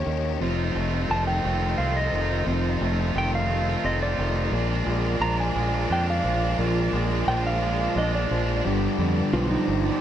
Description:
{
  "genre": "post-rock",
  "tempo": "88 BPM",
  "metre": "3/4",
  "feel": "straight",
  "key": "unclear",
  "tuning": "A4 = 435 Hz",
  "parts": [
    { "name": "clean lap steel guitar", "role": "melody", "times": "0.0-10.0 s", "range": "Eb4 to Bb5", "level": "-28 LUFS", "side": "right 1 dB", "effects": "analog delay" },
    { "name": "warm symphonic string section", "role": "sustained chords", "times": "0.0-10.0 s", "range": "Eb4 to D6", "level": "-39 LUFS", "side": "equal", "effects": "none" },
    { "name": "twangy electric guitar", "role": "arpeggios", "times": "0.0-10.0 s", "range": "F2 to D4", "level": "-29 LUFS", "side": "left 1 dB", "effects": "analog delay" },
    { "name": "biting overdriven guitar", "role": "riff", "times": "0.0-10.0 s", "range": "G2 to G4", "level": "-32 LUFS", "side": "left 12 dB", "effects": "none" },
    { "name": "growling fingered electric bass", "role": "bass", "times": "0.1-9.9 s", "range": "F1 to F2", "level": "-26 LUFS", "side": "right 1 dB", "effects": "overdrive" },
    { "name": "distorted electric guitar", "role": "riff", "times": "0.4-10.0 s", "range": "G2 to F4", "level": "-31 LUFS", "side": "right 13 dB", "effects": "distortion" }
  ],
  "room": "moderate spring reverb, RT60 1.1 s",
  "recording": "dark, warm production",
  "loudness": "-22 LUFS",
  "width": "side -10 dB against mid",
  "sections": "0.0-8.6 A section; 8.6-10.0 B section",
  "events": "build-up 0.0-8.6",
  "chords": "0.4 F7; 4.5 Bb7; 8.6 G7",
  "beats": "| 0.41 1.10 1.79 | 2.48 3.16 3.85 | 4.53 5.22 5.90 | 6.59 7.28 7.96 | 8.64 9.33"
}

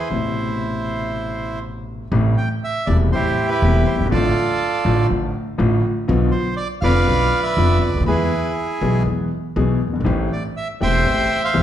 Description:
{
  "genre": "tango",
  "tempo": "121 BPM",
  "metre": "4/4",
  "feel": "rubato",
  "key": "A minor",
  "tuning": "A4 = 440 Hz",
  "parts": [
    { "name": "bandoneon", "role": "melody", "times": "0.0-11.6 s", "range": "E4 to G5", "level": "-21 LUFS", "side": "right 2 dB", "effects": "none" },
    { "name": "warm concert grand piano", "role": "accompaniment", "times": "0.0-11.6 s", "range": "E1 to G#4", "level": "-21 LUFS", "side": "left 2 dB", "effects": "none" },
    { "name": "upright bass", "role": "bass", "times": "0.1-11.6 s", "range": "E1 to E2", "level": "-21 LUFS", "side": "equal", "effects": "none" }
  ],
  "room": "wet large studio reverb, RT60 1.3 s",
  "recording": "heard from further back in the room",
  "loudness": "-17 LUFS",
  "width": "side -11 dB against mid",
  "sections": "0.0-2.1 A section; 2.1-11.6 A section",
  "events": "none",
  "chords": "0.1 Amadd9; 2.1 Am7; 4.1 Dm/A; 6.1 Bdim; 8.1 E; 10.1 Am7",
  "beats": "| 0.12 0.62 1.11 1.62 | 2.12 2.62 3.12 3.61 | 4.10 4.60 5.09 5.59 | 6.08 6.57 7.07 7.57 | 8.06 8.56 9.06 9.56 | 10.06 10.56 11.06 11.56"
}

